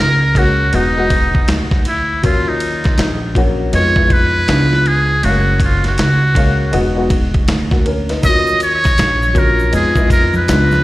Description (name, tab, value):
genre	hip hop, jazz-hop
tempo	80 BPM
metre	4/4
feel	swing 63% on 16ths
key	unclear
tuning	A4 = 440 Hz
part	trumpet with metal mute	melody	0.0-10.8 s	D#4 to Eb5	-16 LUFS	right 1 dB	slapback echo, tape echo
part	warm upright piano	accompaniment	0.0-10.8 s	F3 to F5	-19 LUFS	left 2 dB	slapback echo
part	upright bass	bass	0.0-10.8 s	E1 to F2	-17 LUFS	equal	none
part	dusty soul sampler-style drum kit	drums	0.4-10.8 s	hi-hat, kick drum, ride cymbal, snare drum	-17 LUFS	equal	none
part	egg shaker and congas	percussion	8.2-10.8 s	none	-26 LUFS	right 1 dB	none
room	light reverb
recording	live gig heard through the venue's PA, recital hall reverb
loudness	-11 LUFS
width	side -17 dB against mid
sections	0.0-10.8 A section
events	muted trumpet solo 0.0-10.8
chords	0.0 Gb; 0.7 Emaj9; 2.2 Ebm9; 3.7 Db9/F; 4.5 Db7b9; 5.2 Gbmaj7; 6.7 Emaj9; 8.2 Ebm9; 9.7 Fm7b5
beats	0.73 1.48 | 2.23 2.98 3.73 4.48 | 5.23 5.98 6.73 7.48 | 8.23 8.98 9.73 10.48